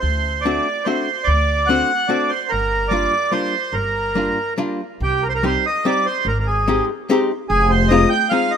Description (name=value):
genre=musette waltz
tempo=145 BPM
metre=3/4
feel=straight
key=G minor, C minor from 5.0 s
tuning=A4 = 438 Hz
part: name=accordion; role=melody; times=0.0-8.6 s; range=G4 to G5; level=-19 LUFS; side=right 2 dB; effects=none
part: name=upright bass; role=bass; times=0.0-8.0 s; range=F1 to D2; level=-21 LUFS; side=equal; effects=none
part: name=archtop guitar, miked and amplified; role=accompaniment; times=0.5-8.5 s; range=G3 to G4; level=-21 LUFS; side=left 3 dB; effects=none
room=light reverb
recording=minimal, uncompressed stereo recording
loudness=-16 LUFS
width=side -8 dB against mid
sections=0.0-5.0 A section; 5.0-8.6 B section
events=none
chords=0.0 D7; 2.5 Gm7; 5.0 Cm; 6.3 Abmaj7; 7.5 Fm7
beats=| 0.03 0.45 0.87 | 1.28 1.69 2.10 | 2.51 2.92 3.33 | 3.74 4.16 4.58 | 5.01 5.43 5.84 | 6.26 6.67 7.09 | 7.50 7.91 8.32